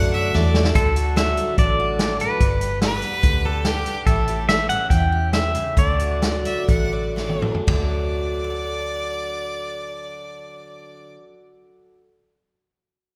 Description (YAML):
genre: honky-tonk and classic country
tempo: 116-145 BPM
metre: 4/4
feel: straight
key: D major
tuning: A4 = 439 Hz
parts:
  - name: pedal steel guitar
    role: melody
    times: 0.0-7.1 s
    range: A4 to G5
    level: -25 LUFS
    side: equal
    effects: none
  - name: clear fiddle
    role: second line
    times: 0.0-4.0, 6.5-11.1 s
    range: G4 to F#5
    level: -30 LUFS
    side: equal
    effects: none
  - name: picked steel-string acoustic guitar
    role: accompaniment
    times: 0.0-12.0 s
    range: G2 to F#5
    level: -30 LUFS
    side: equal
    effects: none
  - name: vintage muted fingered electric bass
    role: bass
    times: 0.0-11.1 s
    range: G1 to F#2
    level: -26 LUFS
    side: equal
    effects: none
  - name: vintage drum kit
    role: drums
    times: 0.3-7.8 s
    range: hi-hat, kick drum, ride cymbal, snare drum, toms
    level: -24 LUFS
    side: equal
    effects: none
room: moderate scoring stage reverb, RT60 1.8 s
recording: recorded in a church or concert hall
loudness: -21 LUFS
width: mono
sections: 0.8-7.7 A section; 7.7-11.8 B section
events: drum fill 0.3-0.8, 7.2-7.7; slowing down 4.1-7.7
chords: 0.0 D; 2.4 G; 4.1 A7; 5.8 D